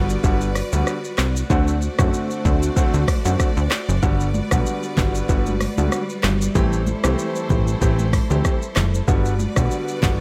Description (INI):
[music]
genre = afrobeats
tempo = 95 BPM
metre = 4/4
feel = swing 55% on 16ths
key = G major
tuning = A4 = 440 Hz
[part]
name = clear baby grand piano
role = accompaniment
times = 0.0-10.2 s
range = D3 to G4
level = -27 LUFS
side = equal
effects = none
[part]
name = clear studio string section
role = sustained chords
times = 0.0-10.2 s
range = G3 to D5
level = -31 LUFS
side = equal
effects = none
[part]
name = plucky analog bass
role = bass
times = 0.0-10.2 s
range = F#1 to F#2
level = -23 LUFS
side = equal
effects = none
[part]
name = deep house drum kit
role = drums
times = 0.1-10.2 s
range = handclaps, hi-hat, kick drum, rim click, shaker, toms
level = -24 LUFS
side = equal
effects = none
[part]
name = congas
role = percussion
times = 4.0-10.2 s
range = none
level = -32 LUFS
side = equal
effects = none
[sound]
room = digital ambience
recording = none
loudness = -20 LUFS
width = mono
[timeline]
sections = 0.0-10.2 A section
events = none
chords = 0.0 Gmaj7; 1.5 D7; 4.0 Gmaj7; 6.6 Am7; 9.1 Gmaj7